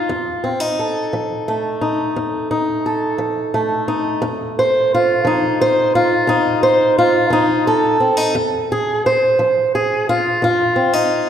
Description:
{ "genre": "acoustic country blues, solo or duo", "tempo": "58 BPM (dotted quarters)", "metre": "12/8", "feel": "straight", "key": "F mixolydian", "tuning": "A4 = 440 Hz", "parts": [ { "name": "fingerpicked swing-style acoustic guitar", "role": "solo", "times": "0.0-11.3 s", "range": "F2 to C5", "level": "-14 LUFS", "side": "equal", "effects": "none" } ], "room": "wet concert hall reverb, RT60 1.9 s", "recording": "recorded in a church or concert hall", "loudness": "-14 LUFS", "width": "side -9 dB against mid", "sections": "0.0-11.3 A section", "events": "none", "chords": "0.0 F7" }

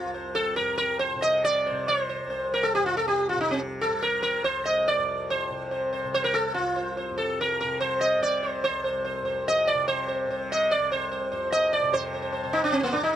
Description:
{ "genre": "indian classical", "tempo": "143 BPM", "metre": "4/4", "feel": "straight", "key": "C raga bageshri", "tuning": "A4 = 443 Hz", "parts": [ { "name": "sitar", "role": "melody", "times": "0.0-13.2 s", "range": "Bb3 to Eb5", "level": "-24 LUFS", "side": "right 1 dB", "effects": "none" }, { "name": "tanpura", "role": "drone", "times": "0.0-13.2 s", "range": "C2 to C3", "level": "-35 LUFS", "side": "left 2 dB", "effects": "none" } ], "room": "light reverb", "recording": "none", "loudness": "-23 LUFS", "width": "side -10 dB against mid", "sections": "0.0-11.9 A section; 11.9-13.2 B section", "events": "speeding up 0.0-13.2", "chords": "none" }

